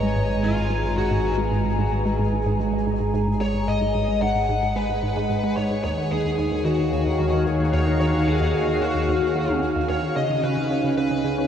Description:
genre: ambient, sequencer-driven space music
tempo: 111 BPM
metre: 4/4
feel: straight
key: G# dorian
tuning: A4 = 440 Hz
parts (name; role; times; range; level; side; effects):
- bluesy overdriven lead guitar; melody; 0.0-11.5 s; E#4 to F#5; -26 LUFS; left 2 dB; distortion, analog delay
- sweeping resonant pad; sustained chords; 0.0-11.5 s; C#3 to A#5; -24 LUFS; equal; chorus
- resonant blip pluck; riff; 0.0-11.4 s; D#2 to C#4; -27 LUFS; equal; chorus, analog delay
- analog drone; bass; 0.0-11.5 s; G#1 to D#2; -28 LUFS; equal; chorus, tube saturation
- pulsing gated texture; texture; 0.0-11.5 s; G#4 to G#5; -35 LUFS; right 2 dB; chorus, built-in reverb
room: wet huge ambient reverb, RT60 7.7 s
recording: dreamy mix soaked in reverb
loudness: -20 LUFS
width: side -8 dB against mid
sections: 0.0-11.5 A section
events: none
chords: 0.0 G#m; 5.8 D#m7; 10.2 C#7

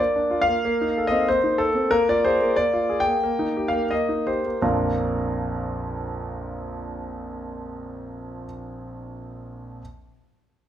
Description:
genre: classical-period piano sonatina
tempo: 81-94 BPM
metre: 2/4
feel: straight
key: Bb major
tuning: A4 = 440 Hz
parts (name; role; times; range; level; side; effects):
- bright concert grand piano; solo; 0.0-9.8 s; Bb1 to G5; -22 LUFS; equal; none
room: moderate recital hall reverb, RT60 1.3 s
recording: close, detailed microphones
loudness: -20 LUFS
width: side -10 dB against mid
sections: 0.0-4.6 A section; 4.6-7.6 B section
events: slowing down 1.3-4.6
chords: 0.0 Bb; 0.6 Bbsus24; 1.9 Bb5; 3.2 Eb/Bb; 4.6 Bb

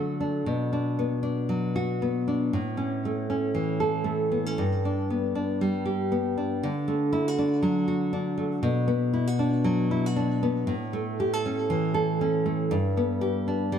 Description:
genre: pop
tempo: 118 BPM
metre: 4/4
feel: swing 55% on 16ths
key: D major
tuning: A4 = 435 Hz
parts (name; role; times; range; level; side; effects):
- nylon-string guitar; solo; 0.0-13.8 s; G2 to A4; -24 LUFS; equal; tape echo
room: moderate plate reverb, RT60 2.8 s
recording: none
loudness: -24 LUFS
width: side -8 dB against mid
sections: 0.0-6.6 A section; 6.6-13.8 B section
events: none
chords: 0.5 Bm; 2.5 A; 4.6 G; 6.6 D; 8.6 Bm; 10.7 A; 12.7 G

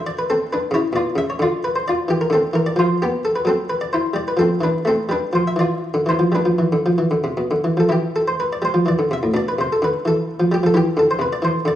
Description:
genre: classical, baroque-style suite movement for harpsichord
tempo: 75-91 BPM (dotted quarters)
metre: 6/8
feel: rubato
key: C major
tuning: A4 = 440 Hz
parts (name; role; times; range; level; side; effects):
- buff-stop harpsichord; solo; 0.0-11.8 s; A2 to E5; -17 LUFS; equal; none
room: wet recital hall reverb, RT60 1.7 s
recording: vinyl crackle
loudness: -17 LUFS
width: side -12 dB against mid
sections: 0.0-7.9 A section; 7.9-11.8 B section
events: none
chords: 0.0 D5; 0.7 Bmadd9; 1.4 Dm; 2.1 C; 2.8 Fadd9; 3.4 F#m7b5; 4.1 G5; 4.8 Am; 6.3 G (rootless); 7.9 C/E; 9.3 G/B; 10.7 C

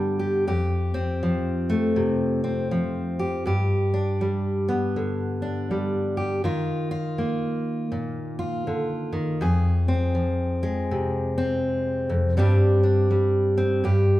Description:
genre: folk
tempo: 81 BPM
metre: 4/4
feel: swing 62% on 8ths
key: unclear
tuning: A4 = 440 Hz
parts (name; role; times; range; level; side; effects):
- fingerpicked steel-string acoustic guitar; solo; 0.0-14.2 s; F2 to Ab4; -22 LUFS; equal; none
room: wet large studio reverb, RT60 1.2 s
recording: band playing live in one room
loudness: -22 LUFS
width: side -15 dB against mid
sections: 0.0-14.2 A section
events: none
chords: 0.5 Fadd9; 3.5 G; 6.4 Ebsus2; 9.4 Fm; 12.4 Gsus4

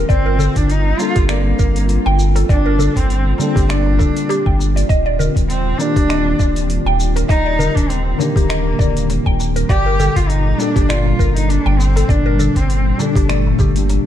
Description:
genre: organic downtempo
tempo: 100 BPM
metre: 4/4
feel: swing 55% on 16ths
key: G minor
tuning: A4 = 440 Hz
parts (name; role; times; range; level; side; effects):
- mellow tine electric piano; accompaniment; 0.0-14.1 s; Bb2 to D5; -23 LUFS; left 3 dB; medium stereo tremolo, sidechain pumping
- ethereal airy pad; sustained chords; 0.0-14.1 s; Bb2 to A4; -25 LUFS; right 2 dB; ensemble chorus, built-in reverb, sidechain pumping
- mallet-like synth pluck; arpeggios; 0.0-13.8 s; G4 to G5; -23 LUFS; equal; wide subtle chorus
- round analog bass; bass; 0.0-14.0 s; D1 to G1; -17 LUFS; equal; sidechain pumping
- dark cello; melody; 0.1-13.9 s; A3 to G4; -21 LUFS; equal; digital delay
- afro-pop drum kit; drums; 0.1-14.0 s; finger snaps, hi-hat, shaker; -28 LUFS; left 1 dB; overdrive
- electronic kick drum; drums; 0.1-13.7 s; none; -16 LUFS; equal; none
- darbuka; percussion; 0.4-14.0 s; none; -25 LUFS; left 2 dB; none
room: little or no reverb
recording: dark, warm production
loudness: -13 LUFS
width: side -11 dB against mid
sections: 0.0-14.1 A section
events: kick drops out 13.9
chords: 0.1 Gmadd9; 4.9 Ebmaj7; 9.7 Gmadd9

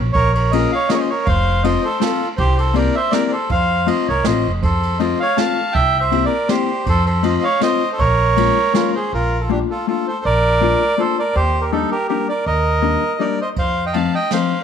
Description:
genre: musette waltz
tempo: 161 BPM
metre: 3/4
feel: swing 53% on 8ths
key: Bb harmonic minor, Bb major from 9.1 s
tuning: A4 = 440 Hz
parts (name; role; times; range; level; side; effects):
- upright bass; bass; 0.0-14.1 s; F1 to F2; -20 LUFS; equal; none
- bandoneon; melody; 0.1-14.6 s; D4 to A5; -18 LUFS; right 2 dB; none
- jazz brush drum kit; drums; 0.1-8.8, 13.6-14.4 s; kick drum, ride cymbal, snare drum; -25 LUFS; right 4 dB; none
- vintage hollow-body jazz guitar; accompaniment; 0.5-14.5 s; F3 to A4; -21 LUFS; left 12 dB; none
room: light reverb, studio ambience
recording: 1960s-style stereo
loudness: -15 LUFS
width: side -8 dB against mid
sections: 0.0-9.1 A section; 9.1-14.6 B section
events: none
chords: 0.1 Bbm7; 1.3 F; 2.4 C7; 3.5 F7; 4.6 F; 5.8 C7; 6.9 F7; 8.0 Bbm7; 9.1 Bbmaj7; 11.3 Ebmaj7; 13.6 F7

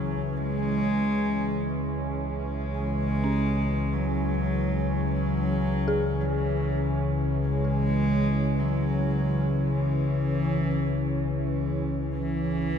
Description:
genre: dark ambient drone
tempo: 51 BPM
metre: 4/4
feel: straight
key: C# minor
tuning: A4 = 440 Hz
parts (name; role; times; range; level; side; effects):
- dark cello; melody; 0.0-12.8 s; E3 to G#3; -29 LUFS; equal; ping-pong delay
- sweeping resonant pad; sustained chords; 0.0-12.8 s; E3 to G#4; -31 LUFS; right 2 dB; chorus
- deep rumbling drone; drone; 0.0-12.8 s; C#2 to C#3; -27 LUFS; left 2 dB; built-in reverb
- dark detuned synth bell; arpeggios; 3.2-12.8 s; C#4 to G#4; -35 LUFS; left 2 dB; chorus, ping-pong delay
room: wet cathedral reverb, RT60 7.0 s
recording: in a vast, echoing space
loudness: -24 LUFS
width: side -7 dB against mid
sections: 0.0-12.8 A section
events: none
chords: 0.0 C#m

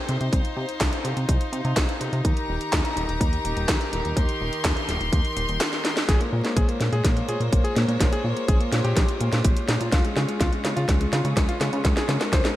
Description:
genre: italo disco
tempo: 125 BPM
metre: 4/4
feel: straight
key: Bb dorian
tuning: A4 = 441 Hz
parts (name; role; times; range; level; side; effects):
- rich chamber string section; sustained chords; 0.0-12.6 s; Eb3 to C6; -30 LUFS; equal; shimmer reverb
- chorused synth bass; bass; 0.1-12.4 s; Eb1 to Db3; -26 LUFS; equal; tube saturation
- house drum kit; drums; 0.1-12.5 s; handclaps, hi-hat, snare drum; -27 LUFS; equal; gated reverb
- electronic kick drum; drums; 0.3-12.4 s; none; -22 LUFS; equal; none
- warm electric grand piano; melody; 6.1-12.5 s; Ab3 to C5; -29 LUFS; left 1 dB; digital delay, shimmer reverb
room: light reverb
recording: vinyl crackle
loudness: -21 LUFS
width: side -14 dB against mid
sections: 0.0-6.1 A section; 6.1-12.6 B section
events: drum fill 5.7-6.1, 6.1-12.6; band accent 6.0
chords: 0.0 Cm; 2.2 Eb; 6.1 Bbm7; 9.9 Db

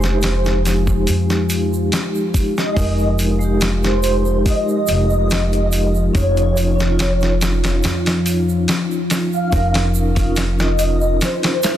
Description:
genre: trip hop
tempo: 71 BPM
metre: 4/4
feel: straight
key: F minor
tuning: A4 = 440 Hz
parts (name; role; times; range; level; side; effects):
- pure breathy sine lead; melody; 0.0-11.8 s; C5 to F5; -23 LUFS; equal; phaser, ensemble chorus, tape echo
- vibraphone with soft mallets; accompaniment; 0.0-11.8 s; Ab3 to Bb4; -22 LUFS; equal; tremolo, vintage 12-bit sampler grit, tape echo
- deep dark ambient pad; sustained chords; 0.2-11.8 s; F3 to F4; -24 LUFS; left 3 dB; chorus, built-in reverb
- upright bass; bass; 0.0-11.2 s; F1 to F2; -18 LUFS; equal; none
- dusty soul sampler-style drum kit; drums; 0.0-11.8 s; hi-hat, kick drum, snare drum; -21 LUFS; equal; none
- tube shaker; percussion; 0.0-11.8 s; none; -32 LUFS; right 7 dB; none
room: light reverb, studio reverb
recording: dense, heavily limited modern master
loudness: -15 LUFS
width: side -11 dB against mid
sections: 0.0-11.8 A section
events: none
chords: 0.0 Fm9; 6.1 Dbadd9/F

